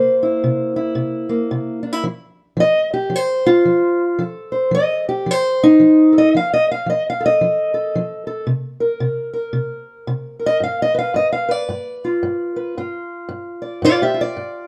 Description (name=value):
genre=acoustic country blues, solo or duo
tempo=112 BPM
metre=4/4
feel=swing 60% on 8ths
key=unclear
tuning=A4 = 439 Hz
part: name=fingerpicked steel-string acoustic guitar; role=solo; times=0.0-14.7 s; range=G2 to F5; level=-18 LUFS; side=equal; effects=none
room=light reverb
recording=dark, warm production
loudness=-18 LUFS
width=mono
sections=0.0-14.7 A section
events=none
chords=0.0 C7; 2.0 F7; 8.5 C7(no3); 10.6 G7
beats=0.43 0.96 1.50 | 2.04 2.57 3.11 3.65 | 4.18 4.72 5.25 5.79 | 6.33 6.86 7.40 7.93 | 8.47 9.01 9.54 10.08 | 10.62 11.15 11.69 12.23 | 12.76 13.30 13.84 14.37